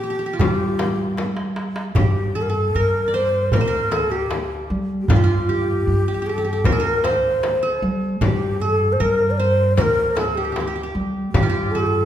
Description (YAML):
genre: Turkish makam ensemble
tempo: 77 BPM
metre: 4/4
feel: straight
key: G makam ussak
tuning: A4 = 437 Hz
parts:
  - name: breathy mellow ney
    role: melody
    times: 0.0-12.1 s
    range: F4 to D5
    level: -22 LUFS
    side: left 1 dB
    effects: none
  - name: qanun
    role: second line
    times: 0.0-12.1 s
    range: F4 to D5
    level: -26 LUFS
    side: right 4 dB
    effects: none
  - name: upright bass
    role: bass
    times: 0.0-12.1 s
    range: D2 to G3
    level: -22 LUFS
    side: right 1 dB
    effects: none
  - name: darbuka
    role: percussion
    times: 0.2-11.6 s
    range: none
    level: -25 LUFS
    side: right 2 dB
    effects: none
  - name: frame drum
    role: percussion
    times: 0.4-11.5 s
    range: none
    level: -26 LUFS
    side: left 3 dB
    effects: none
room: wet recital hall reverb, RT60 1.9 s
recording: recorded in a church or concert hall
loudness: -18 LUFS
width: side -10 dB against mid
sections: 0.0-2.0 A section; 2.0-12.1 B section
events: drum fill 1.2-2.0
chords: none